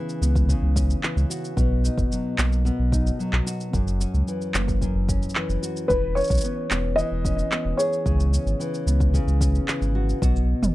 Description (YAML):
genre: folktronica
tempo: 111 BPM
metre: 4/4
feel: straight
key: unclear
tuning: A4 = 440 Hz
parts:
  - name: nylon-string guitar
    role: arpeggios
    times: 0.0-10.7 s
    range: F#2 to G#4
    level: -27 LUFS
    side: left 1 dB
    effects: tape echo
  - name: organic electronic drum kit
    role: drums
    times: 0.1-10.7 s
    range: handclaps, shaker, toms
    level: -28 LUFS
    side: right 1 dB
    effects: none
  - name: warm sub bass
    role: bass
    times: 0.2-10.7 s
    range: E1 to C#2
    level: -22 LUFS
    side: equal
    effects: none
  - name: electronic kick drum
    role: drums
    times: 0.4-10.3 s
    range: none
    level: -26 LUFS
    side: equal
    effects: none
  - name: felt-muted upright piano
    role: melody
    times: 5.9-9.6 s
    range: B4 to D#5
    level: -26 LUFS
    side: equal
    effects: tape echo
room: little or no reverb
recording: dry, close 1970s-style studio recording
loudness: -20 LUFS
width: side -17 dB against mid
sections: 0.0-10.2 A section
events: none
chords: 0.0 C#m7; 1.6 Bmaj7; 3.7 F#7; 5.9 E6; 8.1 C#m7; 10.2 B5